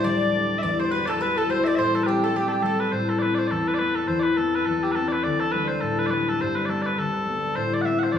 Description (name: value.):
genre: celtic folk, Celtic reel.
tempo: 208 BPM.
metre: 4/4.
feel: swing 58% on 8ths.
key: A dorian.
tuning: A4 = 440 Hz.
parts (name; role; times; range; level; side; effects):
mellow small bagpipes; melody; 0.0-8.2 s; G4 to F#5; -25 LUFS; equal; none.
bright baroque flute; second line; 0.0-2.9 s; G4 to D5; -31 LUFS; left 6 dB; none.
mandolin; second line; 0.0-2.9 s; G4 to D5; -30 LUFS; right 6 dB; none.
concert harp; accompaniment; 0.0-8.2 s; D2 to F#4; -24 LUFS; left 2 dB; none.
room: wet recital hall reverb, RT60 1.5 s.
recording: studio ambience.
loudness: -21 LUFS.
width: side -8 dB against mid.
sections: 0.0-2.9 A section; 2.9-8.2 B section.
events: none.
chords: 0.0 Dsus4; 0.6 Emadd9; 1.8 Am7; 2.9 Amadd9; 5.2 Dsus4; 7.6 Amadd9.